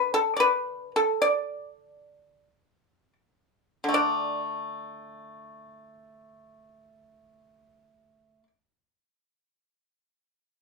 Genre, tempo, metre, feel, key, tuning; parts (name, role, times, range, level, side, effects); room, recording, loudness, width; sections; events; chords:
chinese traditional, Chinese solo plucked strings; 38-60 BPM; 2/4; rubato; A4 = 440 Hz
pipa; solo; 0.0-8.5 s; D3 to D5; -24 LUFS; left 1 dB
light reverb; close, detailed microphones; -24 LUFS; side -3 dB against mid
0.0-3.9 A section; 3.9-10.1 B section
slowing down 0.0-3.9